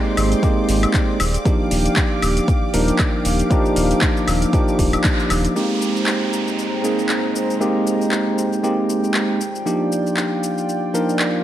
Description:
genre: deep house.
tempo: 117 BPM.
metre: 4/4.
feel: swing 56% on 16ths.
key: Ab lydian.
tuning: A4 = 441 Hz.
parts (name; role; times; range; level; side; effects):
warm analog pad; sustained chords; 0.0-11.4 s; Ab3 to D6; -26 LUFS; right 1 dB; chorus, sidechain pumping.
bell-like tine electric piano; stabs; 0.0-11.4 s; F3 to Bb4; -19 LUFS; equal; sidechain pumping, low-pass filter, digital delay.
rich studio violin section; texture; 0.0-5.6 s; D5 to D6; -33 LUFS; equal; none.
round analog bass; bass; 0.2-5.5 s; Eb1 to Ab1; -20 LUFS; equal; sidechain pumping.
deep house drum kit; drums; 0.2-11.3 s; handclaps, hi-hat, shaker, woodblock; -24 LUFS; left 1 dB; overdrive.
electronic kick drum; drums; 0.4-5.2 s; none; -19 LUFS; equal; overdrive.
downlifter; sound effects; 5.6-9.7 s; none; -31 LUFS; right 2 dB; none.
room: light reverb, digital ambience.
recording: none.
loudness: -16 LUFS.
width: side -12 dB against mid.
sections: 0.0-5.6 A section; 5.6-11.4 B section.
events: band accent 5.0.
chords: 0.0 Abmaj9; 1.2 Ebmaj9; 5.6 Abmaj9; 9.4 Ebmaj9.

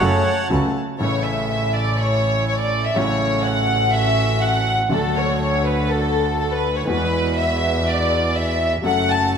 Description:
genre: tango.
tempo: 122 BPM.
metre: 4/4.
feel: rubato.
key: A major.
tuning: A4 = 440 Hz.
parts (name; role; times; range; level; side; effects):
bandoneon; melody; 0.0-0.5 s; C#5 to F#5; -22 LUFS; right 1 dB; none.
warm studio violin section; second line; 0.0-9.4 s; A4 to A5; -20 LUFS; left 1 dB; none.
clear concert grand piano; accompaniment; 0.0-9.4 s; A1 to A4; -25 LUFS; left 1 dB; none.
bandoneon; stabs; 0.0-9.4 s; G#3 to F#4; -28 LUFS; right 4 dB; none.
rich double bass; bass; 0.0-9.4 s; F#1 to E2; -23 LUFS; right 1 dB; none.
room: wet scoring stage reverb, RT60 1.8 s.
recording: none.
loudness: -17 LUFS.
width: side -7 dB against mid.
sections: 1.0-9.4 A section.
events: violin section solo 1.0-9.4.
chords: 0.0 F#m; 1.0 A; 3.0 F#m/A; 4.9 D; 6.9 Eadd9; 8.8 F#m.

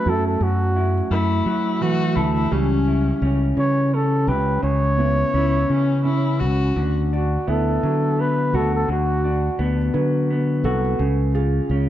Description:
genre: acoustic folk-pop ballad.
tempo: 57 BPM (dotted quarters).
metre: 6/8.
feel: straight.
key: B minor.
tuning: A4 = 440 Hz.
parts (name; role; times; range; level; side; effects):
breathy flugelhorn; melody; 0.0-9.7 s; F#4 to C#5; -24 LUFS; equal; none.
electric guitar through a small old amp; accompaniment; 0.0-11.9 s; F#2 to A4; -25 LUFS; left 1 dB; none.
felt-muted upright piano; arpeggios; 0.0-11.9 s; E3 to B4; -28 LUFS; right 4 dB; none.
fingered electric bass; bass; 0.0-11.9 s; C2 to F#3; -21 LUFS; equal; none.
warm viola; second line; 1.1-6.9 s; C#4 to F#4; -26 LUFS; left 5 dB; none.
room: light reverb.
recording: dark, warm production.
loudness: -18 LUFS.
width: side -12 dB against mid.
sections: 0.0-11.9 A section.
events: none.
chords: 0.0 F#m7; 2.5 C#dim; 6.8 Bm/D; 11.0 C#.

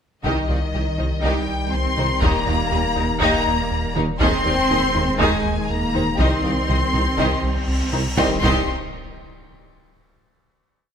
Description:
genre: cinematic, hybrid orchestral and electronic film score.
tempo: 121 BPM.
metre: 4/4.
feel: straight.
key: C minor.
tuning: A4 = 444 Hz.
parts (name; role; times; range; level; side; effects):
warm symphonic violin section; melody; 0.2-8.7 s; Eb5 to C6; -25 LUFS; left 4 dB; none.
rich studio violin section; second line; 0.2-8.7 s; Eb4 to Eb5; -28 LUFS; left 4 dB; none.
rich symphonic viola section; accompaniment; 0.2-8.7 s; Eb3 to Eb4; -26 LUFS; right 1 dB; none.
warm French horn section; sustained chords; 0.2-8.4 s; Eb3 to C4; -29 LUFS; left 4 dB; none.
warm trombone section; sustained chords; 0.2-8.4 s; Eb3 to Ab3; -30 LUFS; right 3 dB; none.
rubbery square bass; riff; 0.2-8.1 s; C2 to Eb3; -26 LUFS; right 1 dB; none.
clear tuba; bass; 0.2-8.6 s; C2 to Eb2; -30 LUFS; right 4 dB; none.
punchy sub bass; bass; 0.2-8.7 s; Eb1 to C2; -28 LUFS; equal; none.
rich symphonic double bass section; bass; 0.2-8.7 s; C2 to Eb2; -29 LUFS; right 2 dB; none.
warm symphonic cello section; bass; 0.2-8.7 s; Eb3 to C4; -28 LUFS; right 3 dB; none.
taiko ensemble; drums; 0.2-9.4 s; none; -26 LUFS; equal; none.
cymbal swell and impact; sound effects; 7.4-10.2 s; none; -31 LUFS; equal; none.
room: light reverb.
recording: close, detailed microphones.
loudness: -18 LUFS.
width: side -7 dB against mid.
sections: 0.2-8.2 theme; 8.2-10.2 final chord.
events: cymbal swell 7.4-8.2; impact 8.2-10.2.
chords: 0.2 Cm; 2.2 Eb; 4.2 Ab/Eb; 6.2 Cm.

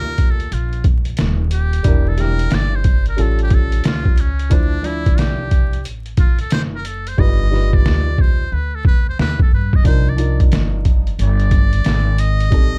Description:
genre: hip hop, jazz-hop.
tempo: 90 BPM.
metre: 4/4.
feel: swing 65% on 16ths.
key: unclear.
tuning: A4 = 440 Hz.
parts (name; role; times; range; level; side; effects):
trumpet with metal mute; melody; 0.0-12.8 s; C#4 to Eb5; -28 LUFS; equal; none.
dark upright piano; accompaniment; 0.0-12.8 s; F3 to D5; -28 LUFS; equal; none.
upright bass; bass; 0.0-12.8 s; Eb1 to G2; -21 LUFS; equal; none.
trip hop sampler-style drum kit; drums; 0.2-12.7 s; hi-hat, kick drum, snare drum; -18 LUFS; equal; none.
room: little or no reverb.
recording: dark, warm production, vinyl crackle.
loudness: -16 LUFS.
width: mono.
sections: 0.0-12.8 A section.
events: muted trumpet solo 0.0-12.8; hi-hats muted 7.2-9.8.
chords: 0.0 Gm7; 1.8 Em7b5; 3.2 A7b13; 4.5 Dm9; 7.2 G7b13; 9.8 Cm11.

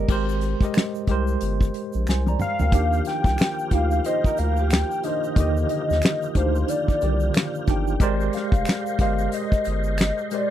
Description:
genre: R&B, neo-soul.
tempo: 91 BPM.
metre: 4/4.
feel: swing 60% on 16ths.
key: Eb major.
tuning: A4 = 440 Hz.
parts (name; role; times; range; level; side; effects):
electric guitar through a small old amp; second line; 0.0-0.1, 4.1-5.5 s; G4 to C5; -31 LUFS; right 12 dB; none.
tine electric piano; accompaniment; 0.0-10.5 s; D3 to Bb5; -27 LUFS; right 2 dB; medium stereo tremolo.
round analog bass; bass; 0.0-10.1 s; F1 to Eb2; -24 LUFS; equal; none.
unplugged drum kit; drums; 0.1-10.5 s; crash cymbal, finger snaps, hi-hat, kick drum, snare drum, toms; -21 LUFS; equal; none.
egg shaker and finger snaps; percussion; 0.1-10.5 s; none; -40 LUFS; right 2 dB; none.
hollow square lead; melody; 2.4-10.5 s; C5 to G5; -26 LUFS; left 3 dB; chorus, slapback echo.
tonewheel organ; sustained chords; 2.7-10.5 s; F3 to C5; -34 LUFS; right 1 dB; slow rotary speaker, overdrive, chorus vibrato.
room: little or no reverb.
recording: dry, close 1970s-style studio recording.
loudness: -20 LUFS.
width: side -11 dB against mid.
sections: 0.1-2.7 A section; 2.7-10.5 B section.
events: drum fill 2.1-2.7.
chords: 0.1 Abmaj9; 2.7 Ebmaj9; 8.0 Abmaj9#11.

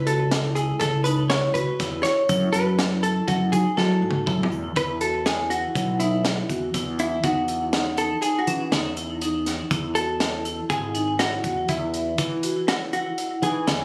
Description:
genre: progressive instrumental, band music in an uneven meter.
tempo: 121 BPM.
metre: 5/4.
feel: straight.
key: E major.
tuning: A4 = 440 Hz.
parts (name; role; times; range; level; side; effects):
vintage hollow-body jazz guitar; melody; 0.0-13.8 s; E4 to C#5; -28 LUFS; equal; delay.
fretless electric bass; bass; 0.0-13.8 s; G#1 to F#3; -29 LUFS; equal; none.
vibraphone with hard mallets; arpeggios; 0.1-13.8 s; C#4 to F#4; -31 LUFS; equal; delay.
crunchy breakbeat drum kit; drums; 0.1-13.8 s; hi-hat, kick drum, snare drum, toms; -29 LUFS; equal; none.
egg shaker; percussion; 0.6-4.6 s; none; -48 LUFS; equal; none.
room: light reverb.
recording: recorded on a phone in the room, studio reverb, compression.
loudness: -24 LUFS.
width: mono.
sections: 0.0-4.8 A section; 4.8-13.8 B section.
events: drum fill 3.8-4.8; hollow-body jazz guitar solo 4.8-13.8.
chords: 0.0 C#m7; 2.3 F#m; 4.8 E5; 7.2 Emaj7sus2; 9.7 F#7sus2/G#.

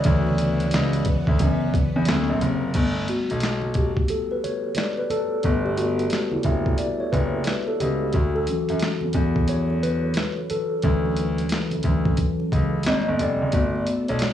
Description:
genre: R&B, neo-soul.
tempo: 89 BPM.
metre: 4/4.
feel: swing 63% on 16ths.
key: unclear.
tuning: A4 = 440 Hz.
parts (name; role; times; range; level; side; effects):
mellow tine electric piano; accompaniment; 0.0-14.3 s; C#3 to E5; -24 LUFS; equal; medium stereo tremolo.
string machine, violins; sustained chords; 0.0-2.7, 13.5-14.3 s; C3 to A4; -31 LUFS; left 1 dB; ensemble chorus.
boom bap sampler-style drum kit; drums; 0.0-14.3 s; crash cymbal, handclaps, hi-hat, kick drum, snare drum; -24 LUFS; equal; cassette tape.
clear grand piano; bass; 0.1-14.2 s; F1 to F#2; -25 LUFS; left 1 dB; transformer saturation.
congas; percussion; 0.3-14.3 s; none; -38 LUFS; right 8 dB; none.
room: light reverb.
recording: home recording on cassette, studio reverb.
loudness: -20 LUFS.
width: side -10 dB against mid.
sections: 0.0-2.7 A section; 2.7-14.3 B section.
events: tine electric piano solo 0.0-2.7, 2.7-14.3.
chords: 0.0 Dmaj9; 2.1 Daug7; 2.7 Gmaj9; 8.1 Dmaj7; 12.9 G#maj9; 13.5 Gmaj9.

